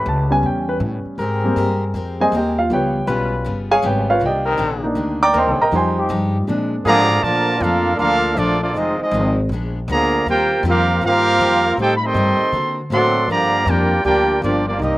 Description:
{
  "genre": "jazz, big band swing",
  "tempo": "159 BPM",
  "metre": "4/4",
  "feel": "swing 66% on 8ths",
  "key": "Bb major from 7.2 s",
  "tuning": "A4 = 440 Hz",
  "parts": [
    { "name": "warm baby grand piano", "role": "accompaniment", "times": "0.0-7.1 s", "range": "F3 to D6", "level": "-18 LUFS", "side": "right 1 dB", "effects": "slapback echo" },
    { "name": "warm trombone section", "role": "sustained chords", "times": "0.0-7.2 s", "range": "Eb3 to Cb5", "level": "-23 LUFS", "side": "left 2 dB", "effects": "none" },
    { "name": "upright bass", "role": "bass", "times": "0.0-15.0 s", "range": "F1 to D3", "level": "-22 LUFS", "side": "equal", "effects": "none" },
    { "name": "picked steel-string acoustic guitar", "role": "accompaniment", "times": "1.2-15.0 s", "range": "F2 to Bb4", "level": "-27 LUFS", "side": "left 3 dB", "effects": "none" },
    { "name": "warm trumpet section", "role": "melody", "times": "6.9-15.0 s", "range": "Bb3 to C6", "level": "-18 LUFS", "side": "right 1 dB", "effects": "none" },
    { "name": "dark trombone section", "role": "second line", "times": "6.9-15.0 s", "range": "D3 to G4", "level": "-19 LUFS", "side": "right 1 dB", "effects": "slapback echo" }
  ],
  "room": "little or no reverb",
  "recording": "recorded outdoors, with no room sound",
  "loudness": "-15 LUFS",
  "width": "side -17 dB against mid",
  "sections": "0.0-7.2 A section; 7.2-15.0 B section",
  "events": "grand piano solo 0.0-7.2",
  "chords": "0.0 A9; 1.2 Abmaj9; 2.7 Db7#11; 4.2 Cm9; 5.7 Fm9; 6.5 Bb7; 7.2 Bbmaj7; 8.7 Fm7; 9.5 Bb7b9; 10.3 Eb69; 11.8 Am7b5; 12.5 D7b13; 13.3 Gm7",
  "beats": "0.06 0.43 0.81 | 1.19 1.56 1.94 2.32 | 2.69 3.07 3.45 3.83 | 4.21 4.58 4.96 5.34 | 5.72 6.10 6.48 6.86 | 7.23 7.61 7.99 8.37 | 8.75 9.13 9.51 9.88 | 10.26 10.64 11.02 11.40 | 11.78 12.15 12.53 12.91 | 13.29 13.66 14.04 14.42 | 14.80"
}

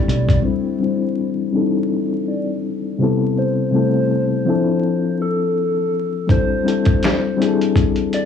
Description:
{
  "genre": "lo-fi hip hop",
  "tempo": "82 BPM",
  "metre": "4/4",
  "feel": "swing 57% on 16ths",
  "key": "C major",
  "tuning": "A4 = 440 Hz",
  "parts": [
    { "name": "soft struck synth lead", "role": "melody", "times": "0.0-8.3 s", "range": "A4 to D5", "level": "-24 LUFS", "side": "right 1 dB", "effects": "chorus, tremolo, low-pass filter, cassette tape" },
    { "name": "mellow reed electric piano", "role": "accompaniment", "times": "0.0-8.3 s", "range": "C3 to C5", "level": "-18 LUFS", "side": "left 4 dB", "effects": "fast tremolo, cassette tape, low-pass filter" },
    { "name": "dusty soul sampler-style drum kit", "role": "drums", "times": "0.1-0.4, 6.3-8.3 s", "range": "finger snaps, hi-hat, kick drum, snare drum", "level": "-18 LUFS", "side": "equal", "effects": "cassette tape" }
  ],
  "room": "moderate studio reverb, RT60 0.6 s",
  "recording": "home recording on cassette, vinyl crackle, small room ambience",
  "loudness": "-16 LUFS",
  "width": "side -7 dB against mid",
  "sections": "0.4-8.3 A section",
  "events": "filter sweep 0.4-8.3",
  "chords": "0.4 C69; 3.0 Am9/C; 4.5 Dm7; 6.3 C69",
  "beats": "| 0.44 1.17 1.90 2.63 | 3.37 4.10 4.83 5.56 | 6.29 7.02 7.76"
}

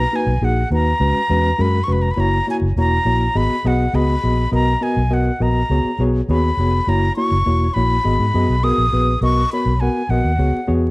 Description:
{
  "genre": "uptempo 1960s-style soul",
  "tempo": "102 BPM",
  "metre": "4/4",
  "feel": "straight",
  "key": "B major",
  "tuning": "A4 = 441 Hz",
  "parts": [
    { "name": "breathy concert flute", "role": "melody", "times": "0.0-10.7 s", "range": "F#5 to D#6", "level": "-21 LUFS", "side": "equal", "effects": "none" },
    { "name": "mellow reed electric piano", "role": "accompaniment", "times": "0.0-10.9 s", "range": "G#3 to F#5", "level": "-20 LUFS", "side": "left 1 dB", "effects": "fast tremolo, tube saturation" },
    { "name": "vintage muted fingered electric bass", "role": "bass", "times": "0.0-10.9 s", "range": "E1 to G#2", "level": "-18 LUFS", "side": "equal", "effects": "none" }
  ],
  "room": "moderate large studio reverb, RT60 0.9 s, small room ambience",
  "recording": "dark, warm production, vinyl crackle",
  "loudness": "-15 LUFS",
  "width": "side -22 dB against mid",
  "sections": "0.0-10.9 A section",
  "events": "none",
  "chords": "0.0 Bmaj7; 1.0 C#7sus4; 2.2 F#7; 3.4 G#m7; 4.5 Bmaj7; 5.7 C#7sus4; 6.9 F#7; 8.1 G#m7; 9.2 Bmaj7; 10.4 C#7sus4",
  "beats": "0.42 1.00 1.59 | 2.18 2.77 3.35 3.94 | 4.53 5.12 5.71 6.29 | 6.88 7.47 8.05 8.64 | 9.23 9.81 10.40"
}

